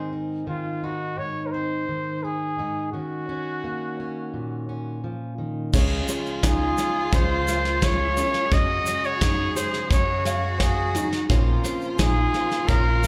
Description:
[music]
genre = indie folk with a building arrangement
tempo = 86 BPM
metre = 4/4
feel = straight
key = Db major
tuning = A4 = 437 Hz
[part]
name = mellow trumpet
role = melody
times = 0.0-13.1 s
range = F4 to Eb5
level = -29 LUFS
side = equal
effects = none
[part]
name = fingerpicked plugged-in steel-string acoustic guitar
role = accompaniment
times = 0.0-5.7 s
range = Ab2 to Ab4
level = -32 LUFS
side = equal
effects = none
[part]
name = dark cello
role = second line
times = 5.7-13.1 s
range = F4 to Ab4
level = -33 LUFS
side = equal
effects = slapback echo, analog delay
[part]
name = felt-muted upright piano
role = accompaniment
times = 5.7-13.1 s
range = Gb1 to Db5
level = -36 LUFS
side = equal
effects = slapback echo
[part]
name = picked swing-style acoustic guitar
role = accompaniment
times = 5.7-13.1 s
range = Bb2 to C5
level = -39 LUFS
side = equal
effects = none
[part]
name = rich chamber string section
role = sustained chords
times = 5.7-13.1 s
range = Db3 to C5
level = -42 LUFS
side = equal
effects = none
[part]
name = dark upright piano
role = arpeggios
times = 5.7-13.1 s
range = Db4 to F5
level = -34 LUFS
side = equal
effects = slapback echo, analog delay
[part]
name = deep dub fingered electric bass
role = bass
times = 5.7-13.1 s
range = Bb1 to Gb2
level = -27 LUFS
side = equal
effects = none
[part]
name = soft brush drum kit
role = drums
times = 5.7-13.1 s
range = crash cymbal, kick drum, snare drum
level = -27 LUFS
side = equal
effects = none
[part]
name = egg shaker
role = percussion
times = 5.7-13.1 s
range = none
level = -40 LUFS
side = equal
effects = none
[sound]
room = light reverb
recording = live gig heard through the venue's PA, club reverb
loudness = -24 LUFS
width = mono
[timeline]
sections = 0.0-5.7 A section; 5.7-13.1 B section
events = none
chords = 0.0 Ab; 2.9 Ebm7; 5.7 Db; 8.5 Gbsus2; 11.3 Bbmadd9

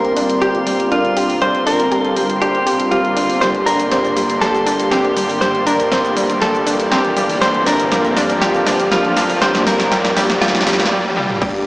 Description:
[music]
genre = progressive house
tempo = 120 BPM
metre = 4/4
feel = straight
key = unclear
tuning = A4 = 440 Hz
[part]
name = direct-recorded clean electric guitar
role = melody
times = 0.0-10.9 s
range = F4 to C5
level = -18 LUFS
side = equal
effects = low-pass filter, dub echo
[part]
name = lush unison pad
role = sustained chords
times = 0.0-11.7 s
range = D3 to G4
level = -23 LUFS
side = equal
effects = chorus, sidechain pumping
[part]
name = soft supersaw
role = stabs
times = 0.0-11.7 s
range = G2 to G5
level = -20 LUFS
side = equal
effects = sidechain pumping, low-pass filter, dub echo
[part]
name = dark detuned saw bass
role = bass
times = 0.0-11.7 s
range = G1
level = -29 LUFS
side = equal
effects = none
[part]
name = house drum kit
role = drums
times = 0.0-11.6 s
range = cabasa, crash cymbal, hi-hat, snare drum, toms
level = -22 LUFS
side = equal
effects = studio reverb
[part]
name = riser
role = sound effects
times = 0.0-11.4 s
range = none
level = -26 LUFS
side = right 1 dB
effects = none
[part]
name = drifting glass-harmonics texture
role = texture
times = 0.0-10.9 s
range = C6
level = -26 LUFS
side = right 1 dB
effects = chorus, built-in reverb, sidechain pumping
[part]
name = analog pluck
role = arpeggios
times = 0.2-11.5 s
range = G3 to G4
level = -21 LUFS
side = equal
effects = chorus, sidechain pumping, dub echo
[part]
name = electronic kick drum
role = drums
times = 11.4-11.5 s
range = none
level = -24 LUFS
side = equal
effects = overdrive, studio reverb
[sound]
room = wet huge ambient reverb, RT60 7.1 s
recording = played on a big sound system in a bare room, stone room reverb, small speaker sound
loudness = -13 LUFS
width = side -22 dB against mid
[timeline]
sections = 0.0-11.4 A section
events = build-up 0.0-11.4; riser 0.0-11.4; filter sweep on synth pluck 0.0-11.4; filter sweep on supersaw synth 0.0-11.4; drum fill 3.4-10.9, 11.0-11.4; break 10.9-11.4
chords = 0.0 Bbadd9/G; 3.4 Gm; 7.4 Bbadd9/G

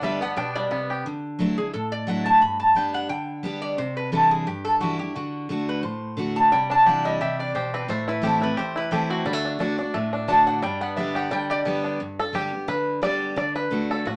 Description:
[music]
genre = bluegrass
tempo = 175 BPM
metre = 4/4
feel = swing 54% on 8ths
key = G major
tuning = A4 = 439 Hz
[part]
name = bluegrass banjo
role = melody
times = 0.0-1.1, 6.5-14.2 s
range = D3 to D5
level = -29 LUFS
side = equal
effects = none
[part]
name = lap resonator guitar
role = melody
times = 0.0-11.6 s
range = F#4 to B5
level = -25 LUFS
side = equal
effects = none
[part]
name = picked steel-string acoustic guitar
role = accompaniment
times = 0.0-14.2 s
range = E2 to G4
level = -30 LUFS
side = equal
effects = none
[sound]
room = wet studio ambience, RT60 0.5 s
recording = tube saturation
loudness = -24 LUFS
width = mono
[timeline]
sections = 0.0-1.1 A section; 1.1-12.0 A section; 12.0-14.2 B section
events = five-string banjo solo 12.0-14.2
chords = 0.0 G; 1.1 Dadd9; 2.4 G; 3.8 Cadd9; 5.2 D; 6.5 Cadd9; 7.9 Am; 9.3 D; 10.6 G; 13.4 D

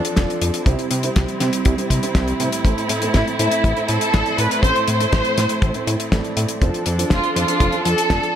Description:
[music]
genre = italo disco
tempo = 121 BPM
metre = 4/4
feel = straight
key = A minor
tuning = A4 = 437 Hz
[part]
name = dark chamber string section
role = sustained chords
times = 0.0-8.4 s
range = F3 to A4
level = -25 LUFS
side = right 1 dB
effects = none
[part]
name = dark grand piano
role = stabs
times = 0.0-8.4 s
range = A2 to E5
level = -25 LUFS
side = right 2 dB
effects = digital delay
[part]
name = damped 70s drum kit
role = drums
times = 0.0-8.3 s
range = hi-hat, snare drum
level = -24 LUFS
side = left 2 dB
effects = studio reverb
[part]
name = fat analog bass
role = bass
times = 0.2-8.2 s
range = F1 to C3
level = -23 LUFS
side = equal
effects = none
[part]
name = kick drum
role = drums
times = 0.2-8.2 s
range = none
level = -18 LUFS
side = equal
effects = studio reverb
[part]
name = rich studio violin section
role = melody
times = 3.1-8.4 s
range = E4 to C5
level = -20 LUFS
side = right 1 dB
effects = digital delay
[sound]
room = light reverb, small room ambience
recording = none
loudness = -16 LUFS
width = side -9 dB against mid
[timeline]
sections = 0.0-8.4 A section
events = none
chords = 0.0 F6; 0.7 C; 2.6 Am; 6.6 F6

